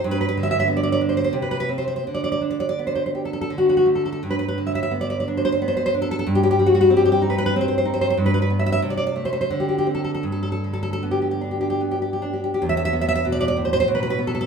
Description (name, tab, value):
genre	romantic piece for solo classical guitar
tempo	68-98 BPM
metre	3/4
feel	rubato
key	G major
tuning	A4 = 440 Hz
part	nylon-string guitar	solo	0.0-14.5 s	E2 to E5	-19 LUFS	equal	none
room	wet large studio reverb, RT60 1.0 s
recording	band playing live in one room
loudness	-19 LUFS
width	side -6 dB against mid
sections	0.0-12.6 A section; 12.6-14.5 B section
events	none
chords	0.0 G; 1.3 N.C.; 2.1 G/D (rootless); 3.5 D5; 4.2 G; 6.3 Cm/G; 8.2 G; 8.8 Am/C; 9.5 D7sus4; 10.2 G; 12.6 E5